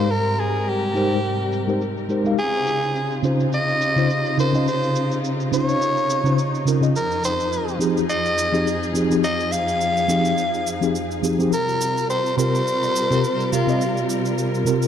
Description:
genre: sunset chillout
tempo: 105 BPM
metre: 4/4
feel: swing 55% on 16ths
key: F minor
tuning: A4 = 436 Hz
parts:
  - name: growling soprano saxophone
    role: melody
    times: 0.0-14.1 s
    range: F4 to F5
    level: -23 LUFS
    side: equal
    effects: digital delay
  - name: mellow tine electric piano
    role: accompaniment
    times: 0.0-14.9 s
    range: C3 to F5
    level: -22 LUFS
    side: moving between left 5 dB and right 2 dB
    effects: medium stereo tremolo, auto-pan, low-pass filter, digital delay
  - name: rich chamber string section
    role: sustained chords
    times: 0.0-14.9 s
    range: F2 to Bb4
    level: -25 LUFS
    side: equal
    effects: low-pass filter
  - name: cabasa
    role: drums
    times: 0.1-14.9 s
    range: none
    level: -33 LUFS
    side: right 5 dB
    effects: low-pass filter on hats, low-pass filter on perc, low-pass filter on snare
room: moderate lush hall reverb, RT60 2.5 s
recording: dark, warm production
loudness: -18 LUFS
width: side -9 dB against mid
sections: 0.0-14.9 A section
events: filter sweep on tine electric piano 0.0-14.9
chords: 0.0 Abmaj9; 2.4 Dbmaj9; 7.0 Fm7; 11.5 C7sus4

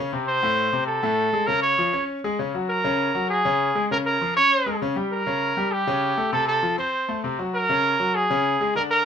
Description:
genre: latin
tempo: 198 BPM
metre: 4/4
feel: straight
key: unclear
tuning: A4 = 439 Hz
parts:
  - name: bright concert grand piano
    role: accompaniment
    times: 0.0-9.0 s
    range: A2 to Db5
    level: -25 LUFS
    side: left 3 dB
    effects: none
  - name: clear trumpet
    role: melody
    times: 0.3-9.1 s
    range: G4 to Db5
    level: -21 LUFS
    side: right 2 dB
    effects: none
room: moderate studio reverb, RT60 0.6 s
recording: minimal, uncompressed stereo recording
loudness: -20 LUFS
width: side -8 dB against mid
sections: 0.0-9.1 A section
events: none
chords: 0.3 Ammaj7; 1.5 Dbadd11; 2.7 Gbadd9/Db; 3.9 Bbm7; 5.1 A7b9/C#; 6.3 F; 7.5 Gbadd9/Db

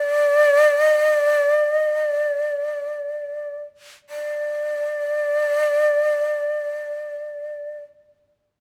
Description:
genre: japanese traditional, Japanese chamber music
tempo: free time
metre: none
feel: none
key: unclear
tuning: A4 = 440 Hz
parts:
  - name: bright reedy shakuhachi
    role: solo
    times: 0.0-7.8 s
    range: D5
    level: -21 LUFS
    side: equal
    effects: none
room: light reverb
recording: close, detailed microphones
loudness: -20 LUFS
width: mono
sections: 0.0-4.1 A section; 4.1-8.6 B section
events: slowing down 0.0-4.1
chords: none

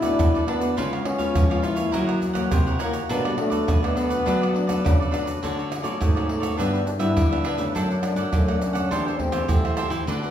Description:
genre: samba and choro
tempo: 103 BPM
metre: 4/4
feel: straight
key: B minor, D major from 5.4 s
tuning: A4 = 439 Hz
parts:
  - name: breathy trombone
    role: melody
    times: 0.0-9.9 s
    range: G3 to E4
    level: -26 LUFS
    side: left 1 dB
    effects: none
  - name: cavaquinho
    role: accompaniment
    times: 0.0-10.3 s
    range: D4 to G5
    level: -30 LUFS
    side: right 3 dB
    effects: none
  - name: nylon-string guitar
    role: accompaniment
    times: 0.0-10.3 s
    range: F#2 to G4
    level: -29 LUFS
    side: left 4 dB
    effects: none
  - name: nylon-string guitar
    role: bass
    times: 0.0-10.3 s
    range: E2 to F#3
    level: -27 LUFS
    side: equal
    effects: none
  - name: egg shaker, surdo, pandeiro and tamborim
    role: percussion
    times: 0.0-10.3 s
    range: none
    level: -25 LUFS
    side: right 1 dB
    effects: none
room: wet recital hall reverb, RT60 1.3 s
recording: recorded in a church or concert hall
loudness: -20 LUFS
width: side -10 dB against mid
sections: 0.0-5.4 A section; 5.4-10.3 B section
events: none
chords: 0.0 Bm7; 0.8 C#7; 1.9 F#7; 3.1 Bm7; 5.4 Dmaj7; 6.6 G6; 7.7 D/F#; 8.9 Am7/E

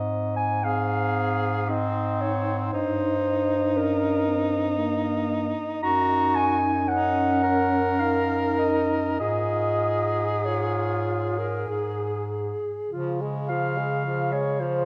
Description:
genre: classical, lyrical piece for single-reed quartet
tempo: 47-58 BPM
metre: 3/4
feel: rubato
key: Db major from 5.8 s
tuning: A4 = 440 Hz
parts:
  - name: dark clarinet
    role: melody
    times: 0.0-14.9 s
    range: Bb4 to Bb5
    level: -28 LUFS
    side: equal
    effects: none
  - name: mellow alto saxophone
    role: second line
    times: 0.0-14.9 s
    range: Bb3 to Bb4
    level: -33 LUFS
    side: equal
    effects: none
  - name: warm bass clarinet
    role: bass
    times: 0.0-14.9 s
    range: Gb2 to Db3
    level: -30 LUFS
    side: equal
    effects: none
  - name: warm tenor saxophone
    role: accompaniment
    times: 0.6-14.9 s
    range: F3 to Bb4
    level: -31 LUFS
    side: equal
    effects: none
room: wet concert hall reverb, RT60 2.3 s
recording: none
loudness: -25 LUFS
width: mono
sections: 0.0-12.9 A section; 12.9-14.9 B section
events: none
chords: 0.0 Ab; 2.7 Eb/G; 5.8 Ebm/Gb; 9.2 Db/Ab; 11.7 N.C.; 12.9 Db

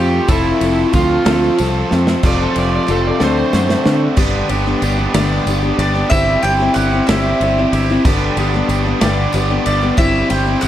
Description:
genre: folk rock and heartland rock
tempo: 62 BPM (dotted quarters)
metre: 6/8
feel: straight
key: G major from 4.2 s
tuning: A4 = 442 Hz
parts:
  - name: overdriven slide guitar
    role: second line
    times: 0.0-4.0 s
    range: E4 to D5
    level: -19 LUFS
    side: right 1 dB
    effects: none
  - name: picked steel-string acoustic guitar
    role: accompaniment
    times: 0.0-10.7 s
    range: G2 to A4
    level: -19 LUFS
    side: left 3 dB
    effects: none
  - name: biting overdriven guitar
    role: riff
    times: 0.0-10.7 s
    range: F2 to A4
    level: -20 LUFS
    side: right 2 dB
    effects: none
  - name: fingered electric bass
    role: bass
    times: 0.0-10.7 s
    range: F1 to D3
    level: -19 LUFS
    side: equal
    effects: none
  - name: natural country drum kit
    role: drums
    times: 0.3-10.7 s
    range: crash cymbal, kick drum, ride cymbal, snare drum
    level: -20 LUFS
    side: equal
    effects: none
  - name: tambourine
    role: percussion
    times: 0.3-10.7 s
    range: none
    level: -36 LUFS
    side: right 5 dB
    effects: none
  - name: mandolin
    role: melody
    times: 5.1-10.7 s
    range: D5 to G5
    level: -20 LUFS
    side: right 1 dB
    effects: none
room: light reverb, studio reverb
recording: none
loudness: -13 LUFS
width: side -12 dB against mid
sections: 0.0-2.2 A section; 2.2-4.2 B section; 4.2-10.7 C section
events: electric slide guitar solo 0.0-2.2; drum fill 1.9-2.2, 3.2-4.2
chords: 0.0 F; 3.2 D7; 4.2 G; 6.1 C/G; 8.0 G; 10.0 C/G

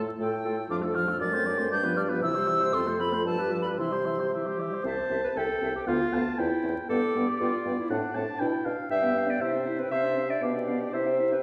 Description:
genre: quick classical-period movement for wind quintet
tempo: 118 BPM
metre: 2/4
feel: straight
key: C major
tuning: A4 = 440 Hz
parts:
  - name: mellow oboe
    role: second line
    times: 0.0-11.4 s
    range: F4 to A5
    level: -36 LUFS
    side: equal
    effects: none
  - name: clear clarinet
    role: accompaniment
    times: 0.0-11.4 s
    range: B3 to E5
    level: -33 LUFS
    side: equal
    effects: none
  - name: mellow French horn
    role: accompaniment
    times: 0.0-11.4 s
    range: E3 to E4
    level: -35 LUFS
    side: equal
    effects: none
  - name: mellow bassoon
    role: bass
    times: 0.0-11.4 s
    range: C2 to C3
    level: -34 LUFS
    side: equal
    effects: none
  - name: bright silver concert flute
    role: melody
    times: 0.2-11.4 s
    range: D5 to A6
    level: -35 LUFS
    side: equal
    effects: none
room: wet recital hall reverb, RT60 1.8 s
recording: heard from further back in the room, vinyl crackle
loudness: -28 LUFS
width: mono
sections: 0.0-4.8 A section; 4.8-11.4 B section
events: none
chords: 0.0 F/A; 0.7 Dm/F; 1.2 D7/F#; 1.7 G7; 2.2 C; 2.7 F; 3.3 G9; 3.8 C; 4.8 C5; 5.9 Bdim/D; 6.4 C/E; 6.9 G; 7.9 F#dim/A; 8.4 G/B; 8.9 G7; 9.4 C; 9.9 Dm7/C; 10.4 G7/B; 10.9 C

